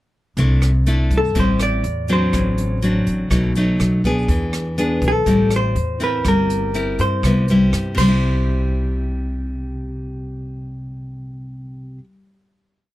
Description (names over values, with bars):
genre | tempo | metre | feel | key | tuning
bossa nova | 122 BPM | 4/4 | straight | C major | A4 = 437 Hz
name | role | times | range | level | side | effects
nylon-string guitar | accompaniment | 0.4-12.1 s | A2 to Bb4 | -20 LUFS | left 1 dB | none
upright bass | bass | 0.4-12.0 s | G1 to G2 | -21 LUFS | equal | none
jazz brush drum kit | drums | 0.4-8.1 s | crash cymbal, hi-hat, kick drum, rim click | -26 LUFS | equal | none
vintage hollow-body jazz guitar | melody | 1.2-12.0 s | A4 to D5 | -22 LUFS | equal | none
room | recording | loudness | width
little or no reverb | lossy compression artefacts | -16 LUFS | side -16 dB against mid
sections
0.4-8.2 A section; 8.2-12.1 final hit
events
none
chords
0.4 C69; 1.4 Am7; 2.3 D7/A; 3.3 B7; 4.3 E7; 5.3 Am7; 6.3 C7/G; 7.2 Cmaj7; 8.0 C